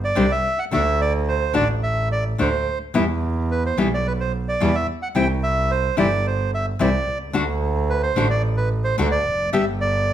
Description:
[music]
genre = tango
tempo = 109 BPM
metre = 4/4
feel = rubato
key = unclear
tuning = A4 = 439 Hz
[part]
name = bandoneon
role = melody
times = 0.0-10.1 s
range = B4 to G5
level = -23 LUFS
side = right 2 dB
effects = none
[part]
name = clear double bass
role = bass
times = 0.0-10.1 s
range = F1 to E2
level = -23 LUFS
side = right 2 dB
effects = none
[part]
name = nylon-string guitar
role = accompaniment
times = 0.2-9.6 s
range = B2 to G4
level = -22 LUFS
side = left 3 dB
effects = none
[sound]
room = light reverb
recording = none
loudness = -19 LUFS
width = side -10 dB against mid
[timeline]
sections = 0.0-10.1 A section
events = none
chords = 0.0 Csus2; 0.7 D5; 2.9 E5; 5.2 C; 7.3 D5; 9.5 G

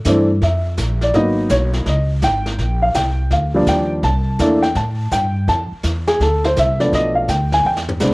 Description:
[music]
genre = jazz piano trio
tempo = 166 BPM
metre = 4/4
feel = swing 65% on 8ths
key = unclear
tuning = A4 = 438 Hz
[part]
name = upright bass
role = bass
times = 0.0-8.1 s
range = Ab1 to A2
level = -19 LUFS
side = equal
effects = none
[part]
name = jazz brush drum kit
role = drums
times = 0.0-8.1 s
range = brushed snare drum, hi-hat, kick drum, snare drum, toms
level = -26 LUFS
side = equal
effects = cassette tape
[part]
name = dark upright piano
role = melody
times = 0.1-8.1 s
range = E3 to A5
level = -16 LUFS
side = equal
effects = cassette tape
[sound]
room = studio reverb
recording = home recording on cassette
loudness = -15 LUFS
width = side -25 dB against mid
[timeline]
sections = 0.0-8.1 A section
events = drum fill 7.6-8.1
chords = 0.0 Bb(#11); 1.1 Abm7; 1.9 Db5; 2.6 Ebmaj9; 4.0 C6; 5.5 Fmaj7; 6.9 Bm7b5

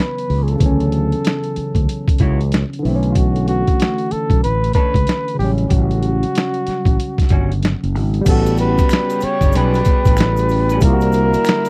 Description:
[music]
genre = R&B, neo-soul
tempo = 94 BPM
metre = 4/4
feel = swing 63% on 16ths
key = unclear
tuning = A4 = 440 Hz
[part]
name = breathy flugelhorn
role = melody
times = 0.0-11.7 s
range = F4 to C#5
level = -24 LUFS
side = equal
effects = none
[part]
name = barky tine electric piano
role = accompaniment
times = 0.0-11.7 s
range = C#3 to F#4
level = -25 LUFS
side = equal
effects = phaser
[part]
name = boom bap sampler-style drum kit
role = drums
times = 0.0-11.7 s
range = crash cymbal, hi-hat, kick drum, snare drum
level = -19 LUFS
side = equal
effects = none
[part]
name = fretless electric bass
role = bass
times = 0.3-11.3 s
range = F#1 to D2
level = -20 LUFS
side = equal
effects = none
[part]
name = electric guitar through a small old amp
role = second line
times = 2.2-10.8 s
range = G3 to C#5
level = -28 LUFS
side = equal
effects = none
[part]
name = warm chamber string section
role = sustained chords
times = 8.3-11.7 s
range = C#3 to E4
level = -29 LUFS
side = equal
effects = none
[part]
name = egg shaker and finger snaps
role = percussion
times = 8.3-11.7 s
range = none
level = -38 LUFS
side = equal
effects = none
[sound]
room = little or no reverb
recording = dry, close 1970s-style studio recording, vinyl crackle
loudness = -16 LUFS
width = mono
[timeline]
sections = 0.0-8.3 A section; 8.3-11.7 B section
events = none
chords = 0.0 Dmaj9; 2.8 Bm9; 5.4 A6; 8.3 A9; 10.8 C9

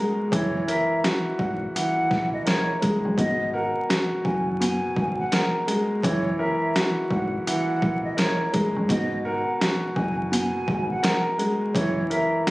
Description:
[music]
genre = hip hop, boom-bap hip-hop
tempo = 84 BPM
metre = 4/4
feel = swing 63% on 16ths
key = G# minor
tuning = A4 = 440 Hz
[part]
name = dark baby grand piano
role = accompaniment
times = 0.0-12.5 s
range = B2 to A#4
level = -24 LUFS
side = equal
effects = high-pass filter, low-pass filter
[part]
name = mellow hollow silver concert flute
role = melody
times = 0.3-12.4 s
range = C#5 to G#5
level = -29 LUFS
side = equal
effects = high-pass filter, low-pass filter, digital delay
[part]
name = deep dub fingered electric bass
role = bass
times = 0.3-12.0 s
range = F#1 to A#1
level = -30 LUFS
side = equal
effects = none
[part]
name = trip hop sampler-style drum kit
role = drums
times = 0.3-12.5 s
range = hi-hat, kick drum, snare drum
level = -27 LUFS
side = equal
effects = overdrive
[sound]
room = light reverb, small room ambience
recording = recorded on a phone in the room, club reverb, vinyl crackle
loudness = -21 LUFS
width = side -20 dB against mid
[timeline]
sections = 0.0-12.5 A section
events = none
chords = 0.3 F#9; 3.2 G#m9; 6.0 F#9; 8.9 G#m9; 11.8 F#7

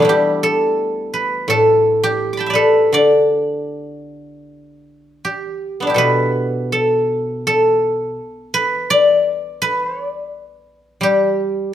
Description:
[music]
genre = chinese traditional, Chinese solo plucked strings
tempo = 83 BPM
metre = 4/4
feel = rubato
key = D zhi mode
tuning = A4 = 440 Hz
[part]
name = guzheng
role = solo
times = 0.0-11.7 s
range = A2 to D6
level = -14 LUFS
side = equal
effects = none
[sound]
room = light reverb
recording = band playing live in one room, faint mains hum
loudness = -14 LUFS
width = side -11 dB against mid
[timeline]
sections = 0.0-6.0 A section; 6.0-11.7 B section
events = none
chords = none

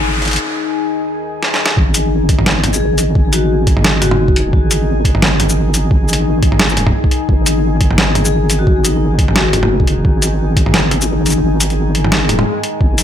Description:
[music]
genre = half-time drum and bass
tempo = 174 BPM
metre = 4/4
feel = swing 56% on 16ths, half-time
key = unclear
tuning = A4 = 442 Hz
[part]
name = deep dark ambient pad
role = sustained chords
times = 0.0-13.0 s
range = D#3 to G#5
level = -20 LUFS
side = left 2 dB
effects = chorus, built-in reverb, sidechain pumping
[part]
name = deep soft wobble bass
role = bass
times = 0.0-13.0 s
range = D#1 to G#1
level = -16 LUFS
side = equal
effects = chorus
[part]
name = riser and swell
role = sound effects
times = 0.0-0.4, 12.2-12.8 s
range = none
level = -22 LUFS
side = left 1 dB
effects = none
[part]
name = boom bap sampler-style drum kit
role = drums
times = 0.2-13.0 s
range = hi-hat, shaker, snare drum, toms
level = -16 LUFS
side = equal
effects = high-pass filter on hats, high-pass filter on toms, high-pass filter on snare, high-pass filter on perc, high-pass filter on room
[part]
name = electronic kick drum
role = drums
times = 1.8-10.6, 12.8-12.9 s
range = none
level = -13 LUFS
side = equal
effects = none
[part]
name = vibraphone with medium hard mallets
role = melody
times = 2.7-4.4, 8.2-9.7 s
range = D#4 to G#4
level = -22 LUFS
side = left 3 dB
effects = tape echo
[sound]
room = light reverb, digital ambience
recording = none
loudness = -11 LUFS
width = side -9 dB against mid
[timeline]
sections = 0.0-1.8 A section; 1.8-13.0 B section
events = build-up 0.0-1.8; riser 0.0-0.4; break 0.4-1.8; drum fill 1.4-1.8; drop 1.8-13.0; kick drops out 11.4-12.8; swell 12.2-12.8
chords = 0.0 G#5

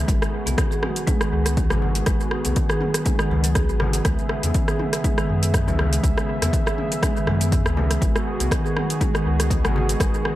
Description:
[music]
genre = afro house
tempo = 121 BPM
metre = 4/4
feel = swing 55% on 16ths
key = G# minor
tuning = A4 = 440 Hz
[part]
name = warm analog pad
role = sustained chords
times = 0.0-10.4 s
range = C#3 to E5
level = -28 LUFS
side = equal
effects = chorus, sidechain pumping
[part]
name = marimba with medium mallets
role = arpeggios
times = 0.0-10.1 s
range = D#3 to G#4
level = -27 LUFS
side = right 2 dB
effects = sidechain pumping, analog delay
[part]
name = warm sub bass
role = bass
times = 0.0-10.1 s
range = G#1 to F#2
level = -23 LUFS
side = equal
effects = sidechain pumping
[part]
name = deep house drum kit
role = drums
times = 0.1-10.4 s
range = hi-hat, rim click, shaker, toms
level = -26 LUFS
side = equal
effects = overdrive, small room reverb, dub echo
[part]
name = electronic kick drum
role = drums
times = 0.1-10.1 s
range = none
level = -23 LUFS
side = equal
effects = overdrive, small room reverb
[part]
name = congas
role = percussion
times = 0.5-9.9 s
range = none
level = -33 LUFS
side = left 3 dB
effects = none
[sound]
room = light reverb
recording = echo-heavy mix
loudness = -19 LUFS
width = side -15 dB against mid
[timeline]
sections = 0.0-10.4 A section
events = none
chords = 0.1 G#m7; 4.1 C#m7; 8.0 G#m7

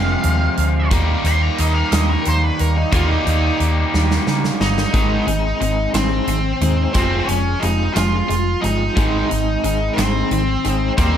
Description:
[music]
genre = quiet-loud alternative rock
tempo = 60 BPM (dotted quarters)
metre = 6/8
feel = straight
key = unclear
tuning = A4 = 443 Hz
[part]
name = octave-fuzz lead guitar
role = melody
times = 0.0-11.2 s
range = C4 to C6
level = -22 LUFS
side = equal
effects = distortion, plate reverb
[part]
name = crunchy overdriven guitar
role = riff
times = 0.0-11.2 s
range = F2 to Eb4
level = -22 LUFS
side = right 1 dB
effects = none
[part]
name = hollow-body short-scale fingered electric bass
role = bass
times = 0.0-11.2 s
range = F1 to Db3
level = -19 LUFS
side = equal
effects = none
[part]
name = huge arena drum kit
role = drums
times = 0.2-11.1 s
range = hi-hat, kick drum, snare drum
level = -23 LUFS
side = right 1 dB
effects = none
[part]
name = electric guitar through a small old amp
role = arpeggios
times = 4.9-11.2 s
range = F3 to Ab4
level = -25 LUFS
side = left 1 dB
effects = tremolo, plate reverb, tape echo
[sound]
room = light reverb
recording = none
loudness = -15 LUFS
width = side -9 dB against mid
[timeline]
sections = 0.0-4.9 A section; 4.9-11.2 B section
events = lead electric guitar solo 0.0-4.9; drum fill 3.9-4.9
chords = 0.0 Fm; 0.9 Eb; 4.9 Ab; 7.0 Fm; 9.0 Ab

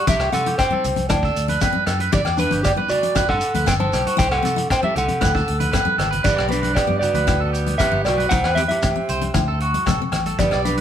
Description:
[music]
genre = highlife guitar band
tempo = 116 BPM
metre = 4/4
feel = straight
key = G major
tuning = A4 = 440 Hz
[part]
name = mellow electric guitar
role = melody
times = 0.0-10.8 s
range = D4 to A5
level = -22 LUFS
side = right 1 dB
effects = none
[part]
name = electric guitar at the edge of break-up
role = arpeggios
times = 0.0-10.8 s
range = F#4 to D5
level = -25 LUFS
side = right 3 dB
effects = spring reverb
[part]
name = picked steel-string acoustic guitar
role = accompaniment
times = 0.1-10.7 s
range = A3 to E4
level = -27 LUFS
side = left 7 dB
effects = none
[part]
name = fingered electric bass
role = bass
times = 0.1-10.8 s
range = G1 to C3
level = -25 LUFS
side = equal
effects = none
[part]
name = vintage drum kit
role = drums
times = 0.1-10.8 s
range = crash cymbal, hi-hat, kick drum, rim click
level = -25 LUFS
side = equal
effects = none
[part]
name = shekere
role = percussion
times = 0.1-10.8 s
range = none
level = -28 LUFS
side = right 2 dB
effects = none
[part]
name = agogo bells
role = percussion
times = 0.2-10.6 s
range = none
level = -29 LUFS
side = left 7 dB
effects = none
[part]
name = congas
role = percussion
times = 0.3-10.8 s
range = none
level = -32 LUFS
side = right 1 dB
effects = none
[part]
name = edgy tenor saxophone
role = second line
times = 6.3-10.8 s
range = G3 to C4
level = -31 LUFS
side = right 5 dB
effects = none
[sound]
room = moderate studio reverb, RT60 0.6 s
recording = band playing live in one room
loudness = -17 LUFS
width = side -9 dB against mid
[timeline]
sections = 0.0-6.3 A section; 6.3-10.8 B section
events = drum fill 5.7-6.3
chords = 0.1 C; 1.1 D; 2.1 G; 4.2 C; 5.2 D; 6.3 G; 8.3 C; 9.4 D

